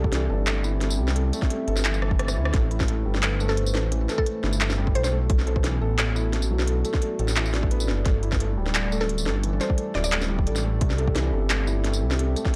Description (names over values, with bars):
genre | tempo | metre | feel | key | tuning
half-time drum and bass | 174 BPM | 4/4 | half-time | unclear | A4 = 440 Hz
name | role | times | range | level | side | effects
dark analog pad | sustained chords | 0.0-12.6 s | G3 to E5 | -35 LUFS | equal | chorus, sidechain pumping
felt-muted upright piano | arpeggios | 0.0-12.6 s | E3 to A4 | -34 LUFS | equal | tape echo
dark detuned saw bass | bass | 0.0-12.4 s | D1 to D2 | -27 LUFS | equal | tube saturation
electronic kick drum | drums | 0.0-12.5 s | none | -26 LUFS | equal | overdrive
industrial drum kit | drums | 0.1-12.5 s | handclaps, hi-hat, rim click, snare drum, tambourine | -31 LUFS | equal | none
mallet-like synth pluck | melody | 3.5-5.1, 9.0-10.1 s | A4 to D5 | -35 LUFS | equal | chorus, vintage 12-bit sampler grit, tape echo
room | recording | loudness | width
little or no reverb | dry, gritty hardware recording, transformer saturation, cassette tape | -24 LUFS | mono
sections
0.0-12.6 A section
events
drum fill 2.0-2.5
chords
0.0 Cadd9; 2.5 Amadd9; 5.3 Bm7; 8.1 Gsus2; 10.8 Cadd9